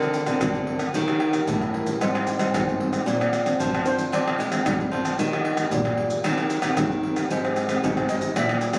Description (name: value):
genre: samba and choro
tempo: 113 BPM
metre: 4/4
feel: straight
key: Eb major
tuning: A4 = 442 Hz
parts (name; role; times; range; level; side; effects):
- steel pan; melody; 0.0-0.1, 3.9-4.4, 8.1-8.5 s; Bb4 to Fb5; -31 LUFS; equal; none
- nylon-string guitar; accompaniment; 0.0-8.8 s; Ab2 to Bb4; -31 LUFS; equal; none
- nylon-string guitar; bass; 0.0-8.8 s; Ab2 to Ab3; -28 LUFS; equal; none
- maracas, pandeiro, tamborim and surdo; percussion; 0.0-8.8 s; none; -28 LUFS; equal; none
room: moderate studio reverb, RT60 0.5 s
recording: recorded on a phone in the room, club reverb, compression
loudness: -24 LUFS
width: mono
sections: 0.0-8.8 A section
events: steel pan solo 0.0-8.8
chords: 0.0 Bbadd9/D; 1.0 Eb7; 2.0 Abmaj7; 3.1 Bbadd9; 5.2 Ebadd9; 6.2 Cm7/Eb; 7.3 Abmaj7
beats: 0.42 | 0.95 1.48 2.01 2.54 | 3.07 3.60 4.13 4.66 | 5.19 5.72 6.25 6.78 | 7.30 7.83 8.36